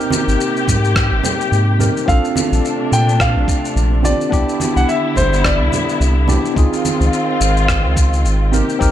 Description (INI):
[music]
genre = sunset chillout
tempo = 107 BPM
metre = 4/4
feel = swing 57% on 16ths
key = unclear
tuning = A4 = 440 Hz
[part]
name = tine electric piano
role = accompaniment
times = 0.0-8.9 s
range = B3 to Bb4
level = -20 LUFS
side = equal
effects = auto-pan, digital delay
[part]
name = muted studio string section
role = sustained chords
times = 0.0-8.9 s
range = C3 to G4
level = -21 LUFS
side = left 3 dB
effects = none
[part]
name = electronic shaker and rim click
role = drums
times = 0.0-8.9 s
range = none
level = -24 LUFS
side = left 1 dB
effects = none
[part]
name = congas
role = percussion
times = 0.1-8.7 s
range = none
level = -24 LUFS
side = right 4 dB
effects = none
[part]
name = round analog bass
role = bass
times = 0.3-8.9 s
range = G1 to Bb2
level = -15 LUFS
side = equal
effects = tube saturation
[part]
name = electronic kick drum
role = drums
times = 0.7-8.9 s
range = none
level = -18 LUFS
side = equal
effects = none
[part]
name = warm grand piano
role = melody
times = 2.1-6.2 s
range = C5 to G5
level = -21 LUFS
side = equal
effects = tape echo
[sound]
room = light reverb, digital ambience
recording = none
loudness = -13 LUFS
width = side -11 dB against mid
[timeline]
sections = 0.0-8.9 A section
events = none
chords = 0.0 Abmaj9; 2.1 Bbmaj9; 4.3 Cmaj9; 6.6 Dbmaj9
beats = 0.40 0.96 1.52 | 2.08 2.64 3.20 3.76 | 4.32 4.88 5.44 6.00 | 6.57 7.13 7.69 8.25 | 8.81